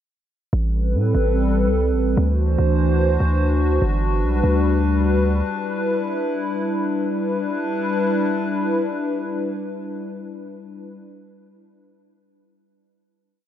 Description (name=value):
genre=hip hop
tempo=146 BPM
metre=4/4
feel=half-time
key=E minor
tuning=A4 = 440 Hz
part: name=hollow soft pad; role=sustained chords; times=0.7-11.0 s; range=E3 to C5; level=-21 LUFS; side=left 1 dB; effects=chorus
part: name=long sustained 808-style bass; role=bass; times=0.5-5.4 s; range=G1 to A2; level=-19 LUFS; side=right 1 dB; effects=none
room=light reverb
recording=none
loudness=-18 LUFS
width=side -10 dB against mid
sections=0.5-7.1 verse; 7.1-10.4 final chord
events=none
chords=0.5 Am9; 2.2 D9; 3.8 Gmaj7; 5.5 Em7